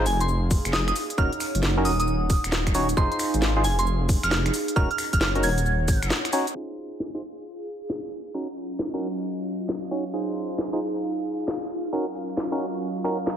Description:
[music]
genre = UK garage, two-step garage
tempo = 134 BPM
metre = 4/4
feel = swing 65% on 16ths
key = F phrygian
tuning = A4 = 440 Hz
[part]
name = percussive organ stab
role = stabs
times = 0.0-13.2 s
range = Db4 to Db5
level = -29 LUFS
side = right 1 dB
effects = chorus, tape echo
[part]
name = dark detuned saw bass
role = bass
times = 0.0-6.1 s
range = Eb1 to Ab1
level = -25 LUFS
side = equal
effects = sidechain pumping
[part]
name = warbly tape-like pad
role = texture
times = 0.1-13.4 s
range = Gb3 to Gb5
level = -32 LUFS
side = right 2 dB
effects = chorus, built-in reverb, sidechain pumping
[part]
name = soft synth bell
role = melody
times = 0.1-6.1 s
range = Ab5 to Ab6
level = -28 LUFS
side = right 2 dB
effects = chorus, tape echo
[part]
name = garage drum kit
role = drums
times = 0.1-13.4 s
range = cabasa, finger snaps, hi-hat, snare drum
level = -29 LUFS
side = left 1 dB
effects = none
[part]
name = electronic kick drum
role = drums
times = 0.5-6.0 s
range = none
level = -24 LUFS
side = equal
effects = none
[part]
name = airy breathy pad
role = sustained chords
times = 6.6-13.4 s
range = F4 to F5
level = -37 LUFS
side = left 3 dB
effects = chorus, phaser, sidechain pumping
[sound]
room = light reverb, digital ambience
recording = vinyl crackle, low-pass filter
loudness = -23 LUFS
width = side -9 dB against mid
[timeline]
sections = 0.0-6.6 A section; 6.6-13.4 B section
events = band accent 6.1; filter sweep on synth stab 6.6-13.4; filter sweep on analog synth pad 6.6-13.4; filter sweep 6.6-13.4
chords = 0.0 Fm7; 1.0 Ebm7; 3.0 Fm7; 4.5 Ebm7; 6.6 Fm7; 8.1 Ebm7; 10.1 Fm7; 11.7 Ebm7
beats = 0.28 0.73 | 1.18 1.63 2.08 2.52 | 2.97 3.42 3.87 4.32 | 4.76 5.21 5.66 6.11 | 6.55 7.00 7.45 7.90 | 8.35 8.79 9.24 9.69 | 10.14 10.58 11.03 11.48 | 11.93 12.38 12.82 13.27

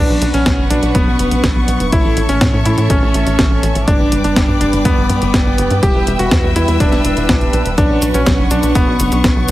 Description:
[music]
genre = italo disco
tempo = 123 BPM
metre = 4/4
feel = straight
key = B minor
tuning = A4 = 441 Hz
[part]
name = bright electric grand piano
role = melody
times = 0.0-9.5 s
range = B3 to G4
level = -18 LUFS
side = left 1 dB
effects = digital delay
[part]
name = clear symphonic string section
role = sustained chords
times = 0.0-9.5 s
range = A4 to E6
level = -23 LUFS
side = equal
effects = none
[part]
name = mellow synth brass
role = stabs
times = 0.0-9.5 s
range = G2 to B4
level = -21 LUFS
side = right 3 dB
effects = chorus
[part]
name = tight sequencer bass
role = bass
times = 0.0-9.5 s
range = E1 to A2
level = -18 LUFS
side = equal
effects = none
[part]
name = clean 12-bit digital drum machine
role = drums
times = 0.2-9.5 s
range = cabasa, hi-hat, snare drum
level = -19 LUFS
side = equal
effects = overdrive
[part]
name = electronic kick drum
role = drums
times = 0.5-9.3 s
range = none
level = -16 LUFS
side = equal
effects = none
[sound]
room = light reverb, digital ambience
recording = heavily compressed radio sound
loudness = -11 LUFS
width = side -15 dB against mid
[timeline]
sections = 0.0-9.5 A section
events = none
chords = 0.0 Bmadd9; 1.9 A; 3.9 G; 5.8 Em; 7.8 Bmadd9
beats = 0.46 0.95 1.44 | 1.93 2.41 2.90 3.39 | 3.88 4.36 4.85 5.34 | 5.83 6.32 6.80 7.29 | 7.78 8.27 8.75 9.24

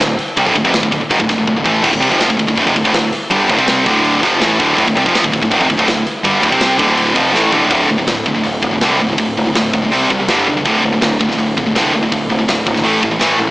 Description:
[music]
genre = heavy metal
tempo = 163 BPM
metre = 4/4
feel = straight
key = D minor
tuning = A4 = 439 Hz
[part]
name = high-gain distorted guitar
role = riff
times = 0.0-13.5 s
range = D2 to C4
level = -14 LUFS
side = right 1 dB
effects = distortion
[part]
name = scooped high-gain guitar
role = riff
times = 0.0-13.5 s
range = D2 to C4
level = -19 LUFS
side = left 3 dB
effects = distortion
[part]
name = growling fingered electric bass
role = bass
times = 0.0-13.5 s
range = D1 to C#2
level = -22 LUFS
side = equal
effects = overdrive
[part]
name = tight metal drum kit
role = drums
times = 0.0-13.3 s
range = crash cymbal, hi-hat, kick drum, snare drum, toms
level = -18 LUFS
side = equal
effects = soft clipping on kick
[sound]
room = light reverb, small room reverb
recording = blown-out, overdriven recording, overdrive, small speaker sound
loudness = -11 LUFS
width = side -20 dB against mid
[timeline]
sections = 0.0-7.7 A section; 7.7-13.5 B section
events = drum fill 1.5-1.8, 7.3-7.7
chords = 0.0 Dm; 7.7 D5; 9.9 C5; 10.3 G5; 10.7 D5; 12.9 A5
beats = | 0.36 0.73 1.10 1.47 | 1.84 2.20 2.57 2.94 | 3.31 3.68 4.04 4.41 | 4.78 5.14 5.51 5.88 | 6.25 6.61 6.98 7.34 | 7.71 8.08 8.45 8.81 | 9.18 9.55 9.92 10.29 | 10.65 11.02 11.39 11.75 | 12.12 12.48 12.85 13.22

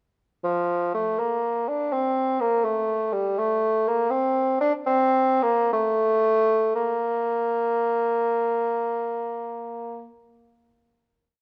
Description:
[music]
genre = classical, baroque-style fantasia for unaccompanied bassoon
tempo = 55-84 BPM (dotted quarters)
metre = 6/8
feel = rubato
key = Bb major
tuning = A4 = 441 Hz
[part]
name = mellow bassoon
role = solo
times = 0.4-10.1 s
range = F3 to D4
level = -24 LUFS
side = equal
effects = none
[sound]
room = moderate recital hall reverb, RT60 1.7 s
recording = close, detailed microphones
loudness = -24 LUFS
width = mono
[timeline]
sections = 0.4-6.8 A section; 6.8-10.6 final note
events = slowing down 2.7-6.8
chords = none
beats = | 0.44 1.21 | 1.95 2.67 | 3.38 4.11 | 4.88 5.75 | 6.76 7.70 | 8.65 9.60

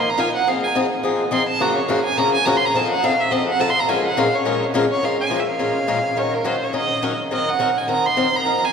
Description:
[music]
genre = jazz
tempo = 210 BPM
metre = 4/4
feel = swing 57% on 8ths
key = Bb minor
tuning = A4 = 438 Hz
[part]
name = rich violin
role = melody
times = 0.0-8.7 s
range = Bb4 to C6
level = -20 LUFS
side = right 2 dB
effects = none
[part]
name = picked swing-style acoustic guitar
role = accompaniment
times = 0.0-8.6 s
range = Gb2 to Bb4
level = -20 LUFS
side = left 2 dB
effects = none
[sound]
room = wet cathedral reverb, RT60 7.0 s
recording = recorded in a church or concert hall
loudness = -17 LUFS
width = side -6 dB against mid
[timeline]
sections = 0.0-5.0 A section; 5.0-8.7 B section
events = violin solo 0.0-5.0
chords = 0.5 Fm7; 1.6 Gbmaj7; 2.7 F7; 3.9 Bbm7; 6.2 Ebm7; 7.3 Cm7b5/Eb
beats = 0.17 | 0.46 0.74 1.03 1.31 | 1.60 1.88 2.17 2.45 | 2.74 3.02 3.31 3.59 | 3.88 4.16 4.45 4.73 | 5.02 5.30 5.59 5.87 | 6.16 6.45 6.73 7.02 | 7.30 7.59 7.88 8.16 | 8.45

